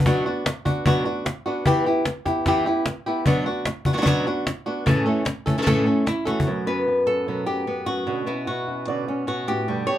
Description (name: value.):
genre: flamenco.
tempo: 150 BPM.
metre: 4/4.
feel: straight.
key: B minor.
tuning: A4 = 439 Hz.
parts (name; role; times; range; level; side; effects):
flamenco guitar; melody; 0.0-10.0 s; F#2 to D5; -22 LUFS; equal; none.
flamenco guitar; stabs; 0.0-0.1, 6.5-10.0 s; F#2 to G4; -30 LUFS; right 4 dB; none.
cajon; percussion; 0.0-6.5 s; none; -23 LUFS; left 1 dB; none.
room: moderate small room reverb, RT60 0.5 s.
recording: none.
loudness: -20 LUFS.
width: side -12 dB against mid.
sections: 0.1-6.5 A section; 6.5-10.0 B section.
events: drum fill 6.3.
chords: 0.1 Bm; 1.7 Em; 3.3 Bm; 4.9 A; 6.5 F#sus4; 8.1 Bmadd9.